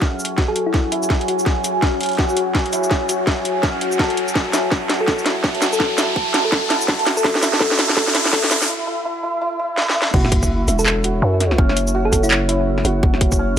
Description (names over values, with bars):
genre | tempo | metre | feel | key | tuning
half-time drum and bass | 166 BPM | 4/4 | swing 60% on 16ths, half-time | F# minor | A4 = 441 Hz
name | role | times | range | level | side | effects
deep dark ambient pad | sustained chords | 0.0-13.6 s | C#4 to A5 | -23 LUFS | left 1 dB | chorus, built-in reverb, sidechain pumping
santur | arpeggios | 0.0-13.6 s | C#4 to F#5 | -25 LUFS | right 2 dB | low-pass filter, tape echo
drum and bass drum kit | drums | 0.0-13.4 s | crash cymbal, handclaps, hi-hat, shaker, snare drum | -20 LUFS | equal | none
electronic kick drum | drums | 0.0-13.4 s | none | -19 LUFS | equal | none
riser and sub drop | sound effects | 1.4-11.6 s | none | -25 LUFS | equal | none
thumb-piano-like synth pluck | melody | 0.5-1.2, 5.0-8.4, 10.8-12.7 s | E4 to A4 | -25 LUFS | equal | chorus, cassette tape, tape echo
growling 808-style bass | bass | 10.1-13.6 s | E1 to F#2 | -19 LUFS | equal | none
room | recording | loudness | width
light reverb | dry, gritty hardware recording, high-pass filter | -16 LUFS | side -9 dB against mid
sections
0.0-10.1 A section; 10.1-13.6 B section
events
build-up 0.0-10.1; drum fill 0.0-8.7, 9.8-10.1; filter sweep on santur 0.0-10.1; filter sweep on synth pluck 0.0-10.1; filter sweep 0.0-10.1; riser 1.4-8.7; break 8.7-10.1; drop 10.1-13.6; impact 10.1-11.6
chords
0.0 F#5